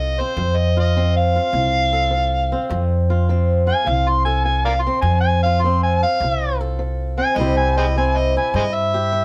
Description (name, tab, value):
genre	acoustic country blues, solo or duo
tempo	103 BPM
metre	4/4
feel	swing 67% on 8ths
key	F major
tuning	A4 = 440 Hz
part	overdriven harmonica	melody	0.0-9.2 s	Ab4 to C6	-22 LUFS	equal	none
part	fingerpicked swing-style acoustic guitar	accompaniment	0.0-9.2 s	F2 to A4	-26 LUFS	equal	none
part	upright bass	bass	0.0-9.2 s	C2 to G2	-22 LUFS	equal	none
room	light reverb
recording	band playing live in one room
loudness	-18 LUFS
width	mono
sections	0.0-9.2 A section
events	harmonica solo 0.0-9.2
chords	0.0 F; 7.4 C